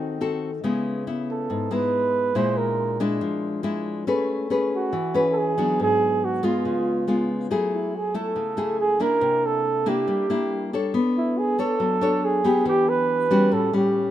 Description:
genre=bossa nova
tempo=140 BPM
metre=4/4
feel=straight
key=unclear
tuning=A4 = 441 Hz
part: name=nylon-string guitar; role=accompaniment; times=0.0-14.1 s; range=G#2 to C#5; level=-23 LUFS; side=left 2 dB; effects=none
part: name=breathy flugelhorn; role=melody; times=1.3-14.1 s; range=E4 to C5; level=-23 LUFS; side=right 3 dB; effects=none
room=light reverb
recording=minimal, uncompressed stereo recording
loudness=-20 LUFS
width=side -12 dB against mid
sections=0.0-7.5 A section; 7.5-14.1 B section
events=none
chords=0.0 G#7b9 (rootless); 0.6 C#m7; 2.4 Bb7#11; 4.1 Amaj9; 5.8 G#m7b5; 6.6 C#7; 7.5 F#m9; 9.2 C9; 10.9 Bm9; 12.7 Em7; 13.5 A6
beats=0.20 | 0.63 1.06 1.49 1.92 | 2.35 2.78 3.21 3.64 | 4.07 4.50 4.93 5.36 | 5.79 6.22 6.64 7.08 | 7.50 7.93 8.36 8.79 | 9.22 9.65 10.08 10.51 | 10.94 11.37 11.80 12.23 | 12.66 13.09 13.52 13.95

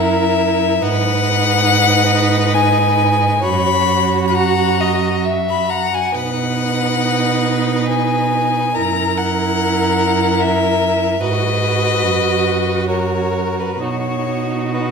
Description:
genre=classical, slow romantic movement for string quartet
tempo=63-75 BPM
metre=3/4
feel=rubato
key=B major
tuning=A4 = 438 Hz
part: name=clear violin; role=melody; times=0.0-14.9 s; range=B4 to B5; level=-18 LUFS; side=left 6 dB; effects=none
part: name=rich violin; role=second line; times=0.0-14.9 s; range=F#4 to F#5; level=-22 LUFS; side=left 1 dB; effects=none
part: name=rich viola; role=accompaniment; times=0.0-14.9 s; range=D#4 to F#4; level=-21 LUFS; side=right 3 dB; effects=none
part: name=clear cello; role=bass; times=0.0-14.9 s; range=F#2 to B2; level=-20 LUFS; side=right 6 dB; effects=none
room=wet scoring stage reverb, RT60 1.6 s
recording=none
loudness=-14 LUFS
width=side -5 dB against mid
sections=0.0-14.9 A section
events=none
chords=0.0 F#7; 0.8 G#m; 3.4 F#; 6.1 B; 8.8 F#7; 11.2 G#m7; 12.0 B/F#; 13.8 B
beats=0.00 | 0.83 1.67 2.54 | 3.43 4.34 5.25 | 6.15 7.04 7.90 | 8.75 9.58 10.39 | 11.21 12.03 12.89 | 13.82 14.75

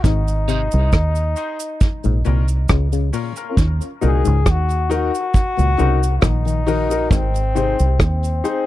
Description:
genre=dub reggae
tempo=68 BPM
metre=4/4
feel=straight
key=Eb dorian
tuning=A4 = 441 Hz
part: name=bright trombone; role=melody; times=0.0-8.7 s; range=C4 to Ab4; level=-24 LUFS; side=left 3 dB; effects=dub echo
part: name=muted clav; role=arpeggios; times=0.0-7.7 s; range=Ab2 to Eb3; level=-26 LUFS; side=left 8 dB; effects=auto-wah, dub echo
part: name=deep dub fingered electric bass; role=bass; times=0.0-8.4 s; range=Ab1 to Eb2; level=-18 LUFS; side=right 1 dB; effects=none
part: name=vintage brush drum kit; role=drums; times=0.0-8.7 s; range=hi-hat, kick drum, rim click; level=-16 LUFS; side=right 1 dB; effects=none
part: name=cabasa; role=percussion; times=0.0-8.7 s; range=none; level=-36 LUFS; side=right 14 dB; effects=high-pass filter on perc
part: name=electric guitar at the edge of break-up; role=accompaniment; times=0.5-0.6 s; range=Eb4 to C5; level=-36 LUFS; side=right 9 dB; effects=tremolo, high-pass filter, dub echo
part: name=warm baby grand piano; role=stabs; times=0.5-8.6 s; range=Db4 to C5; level=-24 LUFS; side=left 4 dB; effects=high-pass filter, dub echo
room=little or no reverb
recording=dry, close 1970s-style studio recording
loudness=-16 LUFS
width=side -15 dB against mid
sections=0.0-8.7 A section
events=filter sweep 0.0-3.6; break 0.0-8.7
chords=0.0 Ab; 1.8 Bbm; 3.6 Ebm; 7.1 Ab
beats=| 0.04 0.92 1.81 2.69 | 3.57 4.46 5.34 6.23 | 7.11 8.00

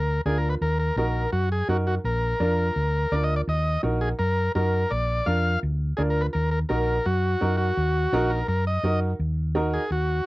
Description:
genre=latin, cumbia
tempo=168 BPM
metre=4/4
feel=straight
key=Eb harmonic minor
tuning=A4 = 440 Hz
part: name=combo organ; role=melody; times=0.0-10.3 s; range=Gb4 to F5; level=-26 LUFS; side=left 1 dB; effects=none
part: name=hollow-body short-scale fingered electric bass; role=bass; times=0.0-10.2 s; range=Bb1 to Gb2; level=-25 LUFS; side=equal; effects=none
part: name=warm upright piano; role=accompaniment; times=0.3-9.8 s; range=D4 to Bb4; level=-27 LUFS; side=right 2 dB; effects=none
room=little or no reverb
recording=dry, close 1970s-style studio recording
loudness=-22 LUFS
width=side -19 dB against mid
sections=0.0-9.2 A section; 9.2-10.3 B section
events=transistor combo organ solo 9.2-10.3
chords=0.0 Bb; 0.6 Ebm; 2.0 Bb; 3.5 Ebm; 4.9 Bb; 6.3 Ebm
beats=0.25 | 0.61 0.97 1.33 1.69 | 2.04 2.40 2.76 3.12 | 3.48 3.83 4.19 4.55 | 4.91 5.26 5.62 5.98 | 6.34 6.70 7.05 7.41 | 7.77 8.12 8.48 8.84 | 9.20 9.55 9.91

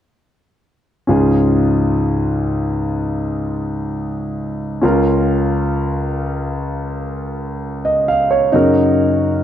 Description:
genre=pop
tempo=65 BPM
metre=4/4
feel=straight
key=Db major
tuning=A4 = 439 Hz
part: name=clear concert grand piano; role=accompaniment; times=1.1-9.4 s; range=Db2 to F5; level=-15 LUFS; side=equal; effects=none
room=light reverb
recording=dry, close 1970s-style studio recording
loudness=-15 LUFS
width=side -10 dB against mid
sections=1.1-9.4 A section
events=none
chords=1.1 Db; 4.8 Bbm/Db; 8.5 Gb6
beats=| 1.09 2.03 2.97 3.90 | 4.83 5.76 6.69 7.62 | 8.53

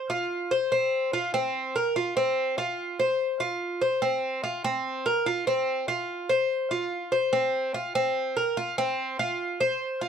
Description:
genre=latin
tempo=145 BPM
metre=4/4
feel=straight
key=unclear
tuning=A4 = 442 Hz
part: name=Cuban tres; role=solo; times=0.0-10.1 s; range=C4 to C5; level=-25 LUFS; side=equal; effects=none
room=moderate studio ambience, RT60 0.5 s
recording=dark, warm production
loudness=-24 LUFS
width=side -7 dB against mid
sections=0.0-10.1 A section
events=none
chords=none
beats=0.31 | 0.72 1.13 1.55 1.96 | 2.37 2.79 3.20 3.61 | 4.03 4.44 4.85 5.27 | 5.68 6.09 6.50 6.92 | 7.33 7.74 8.16 8.57 | 8.98 9.39 9.81

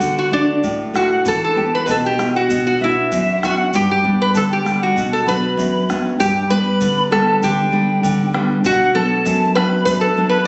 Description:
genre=andean folk, Andean ensemble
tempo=98 BPM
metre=2/4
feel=straight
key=unclear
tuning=A4 = 441 Hz
part: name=metal-body resonator slide guitar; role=melody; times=0.0-10.4 s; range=D4 to B4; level=-21 LUFS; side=equal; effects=none
part: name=bright quena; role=second line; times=0.0-10.5 s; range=D5 to B5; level=-24 LUFS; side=equal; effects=none
part: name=nylon-string guitar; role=accompaniment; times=0.0-10.5 s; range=F#2 to G4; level=-21 LUFS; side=equal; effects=none
part: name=bombo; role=percussion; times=0.0-10.0 s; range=none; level=-31 LUFS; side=equal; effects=none
part: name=tube shaker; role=percussion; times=0.0-10.0 s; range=none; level=-39 LUFS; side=equal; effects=none
room=wet recital hall reverb, RT60 1.2 s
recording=recorded on a phone in the room, studio reverb, nothing above 8.0 kHz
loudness=-17 LUFS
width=mono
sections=0.0-6.2 A section; 6.2-10.5 B section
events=none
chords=0.0 D; 1.3 Em; 2.5 Bm; 3.7 G; 5.0 Bm; 6.2 G; 8.6 Bm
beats=| 0.01 0.63 | 1.25 1.88 | 2.50 3.12 | 3.73 4.35 | 4.97 5.58 | 6.20 6.81 | 7.42 8.04 | 8.65 9.26 | 9.86

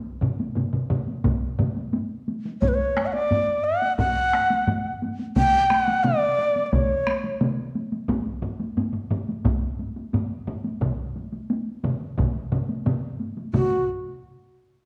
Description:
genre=japanese traditional, taiko drum ensemble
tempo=88 BPM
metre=4/4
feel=straight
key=F# miyako bushi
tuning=A4 = 440 Hz
part: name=solo taiko drums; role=percussion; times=0.2-14.2 s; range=none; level=-30 LUFS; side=equal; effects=none
part: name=taiko ensemble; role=percussion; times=0.2-13.9 s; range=none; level=-31 LUFS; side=equal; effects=none
part: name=taiko ensemble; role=percussion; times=0.2-14.2 s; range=none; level=-31 LUFS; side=equal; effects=none
part: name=taiko ensemble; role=percussion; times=1.2-13.9 s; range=none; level=-31 LUFS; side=equal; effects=none
part: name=breathy bright long shakuhachi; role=melody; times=2.6-7.4, 13.5-13.9 s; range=F#4 to G5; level=-24 LUFS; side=equal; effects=none
room=wet recital hall reverb, RT60 1.2 s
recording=worn, warbling old tape, cassette tape, warbly pitch drift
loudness=-24 LUFS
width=mono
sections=0.0-13.5 A section; 13.5-14.9 B section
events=none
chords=none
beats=0.56 1.25 1.94 | 2.62 3.31 3.99 4.68 | 5.36 6.05 6.73 7.42 | 8.10 8.78 9.46 10.14 | 10.82 11.51 12.19 12.86 | 13.54

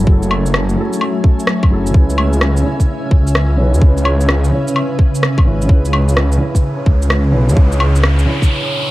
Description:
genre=future garage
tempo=128 BPM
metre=4/4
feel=swing 66% on 16ths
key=unclear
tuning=A4 = 441 Hz
part: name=felt-muted upright piano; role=accompaniment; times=0.0-8.9 s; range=C#3 to C#5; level=-21 LUFS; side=equal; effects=sidechain pumping, low-pass filter, tape echo
part: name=granular cloud pad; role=sustained chords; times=0.0-8.5 s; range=C#3 to G#5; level=-21 LUFS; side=equal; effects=built-in reverb, sidechain pumping
part: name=swelling detuned saw bass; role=bass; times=0.0-8.3 s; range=F#1 to E2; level=-14 LUFS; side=equal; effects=sidechain pumping
part: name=electronic kick drum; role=drums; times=0.1-8.5 s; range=none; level=-10 LUFS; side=equal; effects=none
part: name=electronic shaker, woodblock and rim click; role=drums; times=0.2-8.5 s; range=none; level=-19 LUFS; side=equal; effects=none
part: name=soft struck synth lead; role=melody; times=4.0-4.3 s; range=C#5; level=-26 LUFS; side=right 2 dB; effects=chorus, tremolo, tape echo
part: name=riser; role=sound effects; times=6.4-8.9 s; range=none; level=-24 LUFS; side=equal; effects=none
room=light reverb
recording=vinyl crackle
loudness=-11 LUFS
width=side -17 dB against mid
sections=0.0-8.9 A section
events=riser 6.4-8.9; break 8.5-8.9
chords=0.0 F#m9; 1.9 C#m7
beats=| 0.07 0.54 1.01 1.48 | 1.94 2.41 2.88 3.35 | 3.82 4.29 4.76 5.23 | 5.69 6.16 6.63 7.10 | 7.57 8.04 8.51

